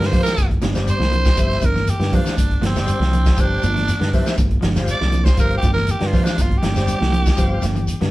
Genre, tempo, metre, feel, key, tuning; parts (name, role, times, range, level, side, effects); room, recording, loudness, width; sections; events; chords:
afrobeat; 120 BPM; 4/4; straight; G dorian; A4 = 439 Hz
raspy tenor saxophone; melody; 0.0-8.0 s; C4 to D5; -24 LUFS; right 2 dB
electric guitar at the edge of break-up; arpeggios; 0.0-8.1 s; D3 to G3; -29 LUFS; left 4 dB
mellow electric guitar; stabs; 0.0-8.1 s; F3 to D4; -29 LUFS; right 5 dB
fingered electric bass; bass; 0.0-8.1 s; G1 to G2; -20 LUFS; equal
vintage drum kit; drums; 0.0-8.1 s; hi-hat, kick drum, snare drum; -20 LUFS; equal
tonewheel organ; accompaniment; 0.1-7.7 s; G3 to G4; -27 LUFS; left 2 dB; fast rotary speaker
congas; percussion; 0.1-7.8 s; -27 LUFS; right 2 dB
shekere; percussion; 0.1-8.0 s; -28 LUFS; left 1 dB
light reverb; band playing live in one room; -16 LUFS; side -17 dB against mid
0.0-8.1 A section
tenor saxophone solo 0.0-8.1
0.0 Gm7